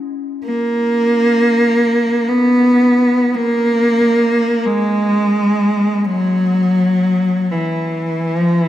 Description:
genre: world meditative, free-time meditation music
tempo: free time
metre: none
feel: none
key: C# dorian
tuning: A4 = 441 Hz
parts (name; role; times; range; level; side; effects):
- bronze singing bowl; texture; 0.0-8.7 s; A#3 to E4; -30 LUFS; left 1 dB; none
- rich cello; melody; 0.4-8.7 s; E3 to B3; -13 LUFS; equal; dub echo
room: wet spring reverb, RT60 1.5 s, small room ambience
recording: echo-heavy mix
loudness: -13 LUFS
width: side -12 dB against mid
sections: 0.0-8.7 A section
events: none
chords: none

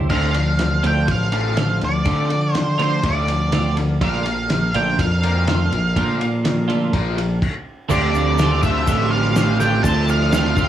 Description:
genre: indie rock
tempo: 123 BPM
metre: 4/4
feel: straight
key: D minor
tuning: A4 = 440 Hz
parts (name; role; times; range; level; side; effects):
- tonewheel organ; sustained chords; 0.0-7.4 s; D4 to F5; -31 LUFS; equal; chorus vibrato, slow rotary speaker
- overdriven semi-hollow guitar; riff; 0.0-10.7 s; Bb2 to D4; -24 LUFS; left 6 dB; phaser
- twelve-string electric guitar; riff; 0.0-10.7 s; D3 to G4; -25 LUFS; right 8 dB; ensemble chorus, analog delay
- growling fingered electric bass; bass; 0.0-10.7 s; A1 to D3; -21 LUFS; equal; overdrive
- octave-fuzz lead guitar; melody; 0.1-10.7 s; C5 to A5; -23 LUFS; right 2 dB; distortion
- cloth-damped thuddy drum kit; drums; 0.1-10.7 s; crash cymbal, kick drum, ride cymbal, snare drum; -24 LUFS; equal; none
- mellow tine electric piano; second line; 7.9-10.7 s; F4 to G4; -29 LUFS; right 10 dB; none
- egg shaker; percussion; 7.9-10.7 s; none; -38 LUFS; left 16 dB; none
room: light reverb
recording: small room ambience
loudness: -16 LUFS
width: side -11 dB against mid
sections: 0.1-7.9 A section; 7.9-10.7 B section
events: stop 7.4-7.9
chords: 0.1 Dm7; 4.0 Bbmaj7; 7.7 N.C.; 7.9 Dm7

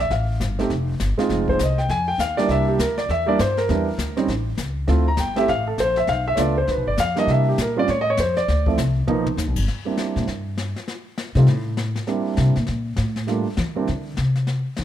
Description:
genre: jazz piano trio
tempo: 201 BPM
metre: 4/4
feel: swing 62% on 8ths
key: C mixolydian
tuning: A4 = 440 Hz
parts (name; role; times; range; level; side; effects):
- warm concert grand piano; melody; 0.0-13.9 s; F3 to Bb5; -21 LUFS; right 2 dB; none
- upright bass; bass; 0.0-14.8 s; F1 to E3; -22 LUFS; left 1 dB; none
- jazz brush drum kit; drums; 0.1-14.8 s; brushed snare drum, crash cymbal, hi-hat, kick drum, snare drum, toms; -30 LUFS; left 4 dB; none
room: light reverb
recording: none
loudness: -19 LUFS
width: side -11 dB against mid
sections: 0.0-9.7 A section; 9.7-14.8 A section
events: grand piano solo 0.0-9.7; drum fill 9.1-9.4; upright bass solo 9.7-14.8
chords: 0.1 F; 1.3 Fm7; 2.5 C7; 3.7 Em7; 4.3 A; 4.9 Dm7; 6.1 G7 (rootless); 7.3 C7; 7.9 F(b13); 8.5 D7(no3); 9.1 G7alt; 9.7 C7; 10.9 N.C.; 12.1 C7; 13.3 Gm7; 13.9 Csus2

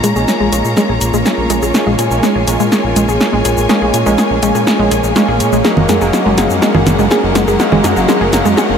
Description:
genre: melodic techno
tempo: 123 BPM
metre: 4/4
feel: straight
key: Bb minor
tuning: A4 = 440 Hz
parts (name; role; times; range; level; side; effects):
- rich symphonic string section; sustained chords; 0.0-8.8 s; Gb3 to Bb5; -18 LUFS; left 1 dB; none
- wide unison pluck; arpeggios; 0.0-8.6 s; Ab3 to Ab4; -16 LUFS; equal; cassette tape, ping-pong delay
- sync-sweep polysynth; stabs; 0.0-8.8 s; Gb3 to Db4; -17 LUFS; right 1 dB; chorus, ping-pong delay
- plucky analog bass; bass; 0.0-8.8 s; Gb1 to Bb2; -18 LUFS; equal; none
- deep house drum kit; drums; 0.0-8.7 s; congas, hi-hat, shaker, snare drum; -16 LUFS; equal; overdrive
- riser; sound effects; 2.3-8.8 s; none; -27 LUFS; equal; none
room: wet huge ambient reverb, RT60 7.2 s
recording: dreamy mix soaked in reverb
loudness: -10 LUFS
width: side -7 dB against mid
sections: 0.0-8.8 A section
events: build-up 0.0-8.8; drum fill 0.0-8.8; filter sweep on analog polysynth 0.0-8.8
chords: 0.0 Bbm7; 5.6 Gbadd9

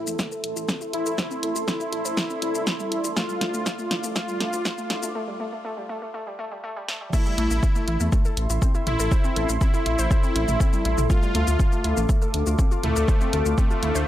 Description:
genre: melodic techno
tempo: 121 BPM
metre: 4/4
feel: straight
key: A minor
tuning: A4 = 441 Hz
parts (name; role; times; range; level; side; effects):
- soft supersaw; melody; 0.0-14.1 s; A3 to F4; -29 LUFS; equal; sidechain pumping, low-pass filter, analog delay
- deep dark ambient pad; sustained chords; 0.0-14.1 s; A4 to D6; -31 LUFS; left 1 dB; chorus, built-in reverb, sidechain pumping
- warbly dusty pluck; arpeggios; 0.0-14.0 s; G3 to C5; -32 LUFS; equal; chorus, sidechain pumping, analog delay
- swelling detuned saw bass; bass; 0.0-14.0 s; A1 to E2; -26 LUFS; equal; sidechain pumping, high-pass filter
- punchy analog drum machine; drums; 0.1-14.1 s; crash cymbal, hi-hat, shaker, snare drum, toms; -29 LUFS; equal; none
- electronic kick drum; drums; 0.2-13.7 s; none; -22 LUFS; equal; high-pass filter on kick
room: little or no reverb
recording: dry, gritty hardware recording, high-pass filter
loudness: -21 LUFS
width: side -13 dB against mid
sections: 0.0-7.1 A section; 7.1-14.1 B section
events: build-up 0.0-7.1; drum fill 0.0-5.1, 6.9; filter sweep on synth arpeggio sound 0.0-7.1; filter sweep on supersaw synth 0.0-7.1; break 5.1-7.1; drop 7.1-14.1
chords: 0.0 Am; 3.2 Dm; 7.1 Am; 11.1 Dm

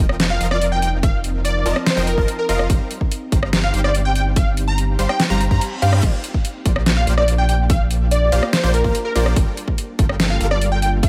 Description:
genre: future bass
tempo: 144 BPM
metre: 4/4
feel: half-time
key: unclear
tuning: A4 = 439 Hz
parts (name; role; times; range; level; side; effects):
- ethereal airy pad; sustained chords; 0.1-11.1 s; F3 to Bb4; -34 LUFS; equal; ensemble chorus, built-in reverb, sidechain pumping
- supersaw stab; riff; 0.0-11.1 s; F3 to C6; -29 LUFS; equal; sidechain pumping, digital delay
- saturated sub bass; bass; 0.0-11.1 s; F1 to G2; -22 LUFS; equal; sidechain pumping
- dubstep drum kit; drums; 0.1-11.1 s; crash cymbal, hi-hat, rim click, snare drum; -24 LUFS; equal; overdrive
- plucky unison lead; melody; 0.3-11.1 s; Bb4 to Bb5; -25 LUFS; equal; ensemble chorus, sidechain pumping, digital delay
- electronic kick drum; drums; 1.0-11.1 s; none; -20 LUFS; equal; none
- reverse cymbal; sound effects; 5.5-6.0 s; none; -35 LUFS; equal; none
room: little or no reverb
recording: none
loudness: -18 LUFS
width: mono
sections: 0.0-11.1 A section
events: reverse cymbal 5.5-6.0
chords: 0.0 F7sus4; 2.7 Eb6/G; 6.0 Bb6; 9.4 Gm7

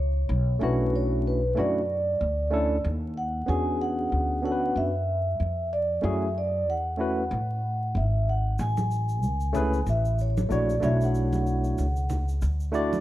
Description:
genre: hip hop, jazz-hop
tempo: 94 BPM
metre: 4/4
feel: swing 57% on 16ths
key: unclear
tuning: A4 = 442 Hz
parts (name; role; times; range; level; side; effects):
- vibraphone with soft mallets; melody; 0.0-12.3 s; B4 to G#5; -29 LUFS; equal; none
- upright bass; bass; 0.0-13.0 s; G#1 to A2; -27 LUFS; equal; none
- barky tine electric piano; accompaniment; 0.6-13.0 s; A3 to D5; -28 LUFS; equal; fast stereo tremolo
- tube shaker and congas; percussion; 8.6-13.0 s; none; -34 LUFS; right 2 dB; none
room: light reverb, small room ambience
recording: vinyl crackle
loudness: -24 LUFS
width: side -14 dB against mid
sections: 0.0-13.0 A section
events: none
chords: 0.0 Aadd9 (rootless); 0.6 Bm11; 3.5 E13; 6.0 F#m9; 8.6 Amaj7; 10.8 Bm11

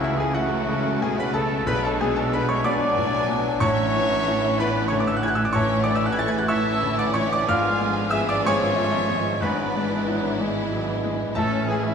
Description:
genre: classical, romantic movement for piano and orchestra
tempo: 62 BPM (dotted quarters)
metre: 12/8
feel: rubato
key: A major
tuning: A4 = 439 Hz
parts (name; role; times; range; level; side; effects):
- clear grand piano; melody; 0.0-11.9 s; B1 to A6; -25 LUFS; left 2 dB; none
- warm symphonic violin section; melody; 0.0-11.9 s; G#4 to C#6; -34 LUFS; left 2 dB; none
- bright clarinet; second line; 0.0-11.9 s; C#4 to E#4; -34 LUFS; left 3 dB; none
- mellow concert flute; second line; 0.0-11.9 s; E5 to A6; -33 LUFS; left 2 dB; none
- warm oboe; second line; 0.0-11.9 s; E4 to A5; -34 LUFS; right 2 dB; none
- warm symphonic violin section; second line; 0.0-11.9 s; A3 to G#4; -32 LUFS; left 2 dB; none
- warm bassoon; accompaniment; 0.0-11.9 s; D3 to A3; -33 LUFS; right 1 dB; none
- warm symphonic viola section; accompaniment; 0.0-11.9 s; E3 to C#4; -32 LUFS; right 2 dB; none
- warm French horn section; sustained chords; 0.0-11.9 s; E3 to A4; -31 LUFS; left 3 dB; none
- warm trumpet; stabs; 0.0-11.9 s; E4 to A5; -30 LUFS; right 3 dB; none
- rich studio cello section; bass; 0.0-11.9 s; G#2 to C#3; -31 LUFS; right 2 dB; none
- rich symphonic double bass section; bass; 0.0-11.9 s; G#1 to C#2; -32 LUFS; right 4 dB; none
room: wet scoring stage reverb, RT60 1.9 s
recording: minimal, uncompressed stereo recording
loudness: -20 LUFS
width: side -6 dB against mid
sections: 0.0-11.9 A section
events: none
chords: 0.0 A/C#; 1.7 G#dim/B; 3.6 A; 7.5 G#dim7; 9.4 E7/G#; 11.4 A

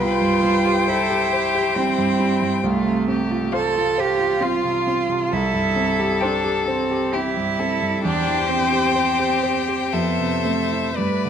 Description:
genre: classical, slow romantic movement for piano quintet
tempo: 67 BPM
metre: 3/4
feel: rubato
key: C major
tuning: A4 = 440 Hz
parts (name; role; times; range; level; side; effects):
- rich violin; melody; 0.0-11.3 s; D5 to G5; -24 LUFS; left 11 dB; none
- rich cello; second line; 0.0-11.3 s; A3 to A4; -22 LUFS; right 5 dB; none
- rich violin; second line; 0.0-11.3 s; E4 to B4; -27 LUFS; left 5 dB; none
- clear concert grand piano; accompaniment; 0.0-11.3 s; C2 to C5; -23 LUFS; right 1 dB; none
- rich viola; accompaniment; 0.0-11.3 s; B4 to C5; -28 LUFS; right 2 dB; none
room: moderate recital hall reverb, RT60 1.4 s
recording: close, detailed microphones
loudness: -18 LUFS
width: side -8 dB against mid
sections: 0.0-11.3 A section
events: none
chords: 0.0 C; 2.6 F/C; 5.3 C; 8.0 C/E; 9.9 Fmaj7

